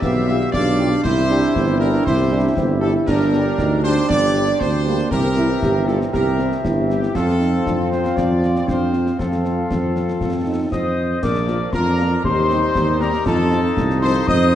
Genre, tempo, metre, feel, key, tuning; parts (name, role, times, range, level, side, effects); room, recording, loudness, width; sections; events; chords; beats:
military-style march for wind band; 118 BPM; 2/4; straight; A4 = 440 Hz
clear trumpet section; melody; 0.0-14.6 s; G4 to E5; -25 LUFS; equal
dark woodwind section; second line; 0.0-14.6 s; F4 to F5; -26 LUFS; left 2 dB
mellow euphonium; second line; 0.0-11.2 s; Bb3 to G4; -23 LUFS; right 2 dB
warm trombone section; sustained chords; 0.0-14.6 s; E3 to F4; -27 LUFS; right 2 dB
mellow tuba; bass; 0.0-14.6 s; G1 to F2; -20 LUFS; right 2 dB
concert snare drum, concert bass drum and clash cymbals; drums; 0.0-14.6 s; -27 LUFS; left 2 dB
dark French horn section; accompaniment; 0.3-14.1 s; F3 to G4; -28 LUFS; left 5 dB
wooden piccolo; second line; 10.7-14.6 s; A5 to Eb6; -24 LUFS; left 5 dB
moderate scoring stage reverb, RT60 1.7 s; dark, warm production, nothing above 10.4 kHz; -16 LUFS; side -11 dB against mid
0.0-11.2 A section; 11.2-14.6 B section
0.0 G7/B; 1.0 C; 3.1 Gm; 5.1 C7; 7.2 F; 11.2 Bb; 12.2 Cm/Eb; 13.3 F7
| 0.02 0.53 | 1.04 1.55 | 2.06 2.57 | 3.08 3.59 | 4.10 4.61 | 5.12 5.62 | 6.13 6.64 | 7.15 7.66 | 8.17 8.68 | 9.19 9.70 | 10.21 10.72 | 11.22 11.73 | 12.24 12.75 | 13.26 13.77 | 14.28